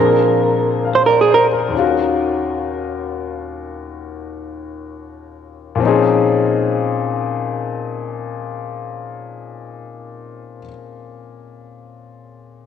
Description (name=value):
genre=jazz ballad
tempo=52-70 BPM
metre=4/4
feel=swing 69% on 8ths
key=Bb minor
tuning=A4 = 440 Hz
part: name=hollow-body jazz guitar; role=melody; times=0.0-1.5 s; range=Ab4 to C5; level=-15 LUFS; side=right 5 dB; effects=cassette tape
part: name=clear baby grand piano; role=accompaniment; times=0.0-12.7 s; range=Eb2 to F5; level=-19 LUFS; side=left 6 dB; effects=none
room=wet lush hall reverb, RT60 3.4 s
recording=home recording on cassette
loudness=-15 LUFS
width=side -8 dB against mid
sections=0.0-1.7 A section; 1.7-5.8 B section; 5.8-10.4 C section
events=slowing down 0.0-5.8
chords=0.0 Bb7; 1.7 Ebm7; 5.8 Bbm11